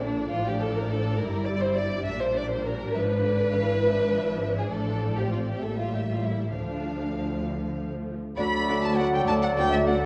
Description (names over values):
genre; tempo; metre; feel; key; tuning
quick classical-period movement for symphony orchestra; 68 BPM (dotted quarters); 6/8; straight; D minor; A4 = 436 Hz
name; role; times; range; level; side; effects
rich chamber violin section; melody; 0.0-9.9 s; D5 to B5; -36 LUFS; equal; none
warm symphonic violin section; second line; 0.0-10.0 s; D4 to E5; -31 LUFS; equal; none
warm symphonic viola section; accompaniment; 0.0-10.0 s; D3 to E4; -35 LUFS; equal; none
rich chamber double bass section; bass; 0.0-10.1 s; G1 to D2; -34 LUFS; equal; none
warm chamber cello section; bass; 0.0-10.1 s; D2 to D3; -35 LUFS; equal; none
clear clarinet; second line; 8.4-10.1 s; A4; -36 LUFS; equal; none
large flute ensemble; second line; 8.4-10.1 s; E5 to B5; -34 LUFS; equal; none
warm oboe; second line; 8.4-10.1 s; D5; -36 LUFS; equal; none
warm bassoon; accompaniment; 8.4-10.1 s; F#3; -32 LUFS; equal; none
dark French horn section; sustained chords; 8.4-10.1 s; A3 to F#4; -34 LUFS; equal; none
warm trumpet; stabs; 8.4-10.1 s; D5; -35 LUFS; equal; none
room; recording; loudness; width
moderate scoring stage reverb, RT60 1.7 s; worn, warbling old tape, cassette tape, warbly pitch drift; -27 LUFS; mono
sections
0.0-8.4 A section; 8.4-10.1 A section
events
none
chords
0.0 Bb; 1.2 Gm; 2.9 G#dim7; 4.7 Dm/A; 5.6 A5; 6.5 Dm; 8.4 D